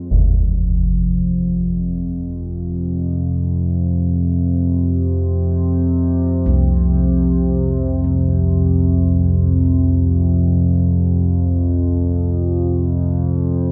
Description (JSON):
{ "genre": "ambient", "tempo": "free time", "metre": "none", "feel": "none", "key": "unclear", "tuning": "A4 = 441 Hz", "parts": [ { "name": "analog drone", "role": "drone", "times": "0.0-13.7 s", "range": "F2 to C4", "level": "-18 LUFS", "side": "equal", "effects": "chorus" }, { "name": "gamelan-type bossed gongs", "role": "arpeggios", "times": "6.5-12.8 s", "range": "C2", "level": "-25 LUFS", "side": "equal", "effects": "tape echo" } ], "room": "studio ambience", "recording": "echo-heavy mix", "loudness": "-17 LUFS", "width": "mono", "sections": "0.1-13.7 A section", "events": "none", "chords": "0.1 F5", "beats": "free time" }